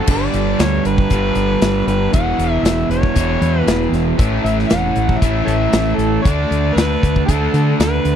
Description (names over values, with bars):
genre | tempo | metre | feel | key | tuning
classic rock | 117 BPM | 4/4 | straight | unclear | A4 = 437 Hz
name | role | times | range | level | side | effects
overdriven harmonica | melody | 0.0-8.2 s | A4 to F#5 | -22 LUFS | left 1 dB | none
crunchy overdriven guitar | riff | 0.0-8.2 s | G2 to F#4 | -21 LUFS | left 13 dB | none
distorted electric guitar | riff | 0.0-8.2 s | E2 to D4 | -20 LUFS | right 16 dB | distortion
growling fingered electric bass | bass | 0.1-8.2 s | E1 to D3 | -19 LUFS | equal | overdrive
big rock drum kit | drums | 0.1-8.2 s | crash cymbal, hi-hat, kick drum, snare drum | -18 LUFS | equal | none
room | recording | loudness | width
little or no reverb | dry, close 1970s-style studio recording | -14 LUFS | side -9 dB against mid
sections
0.1-8.2 A section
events
none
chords
0.1 G; 2.1 E; 4.2 A; 6.3 D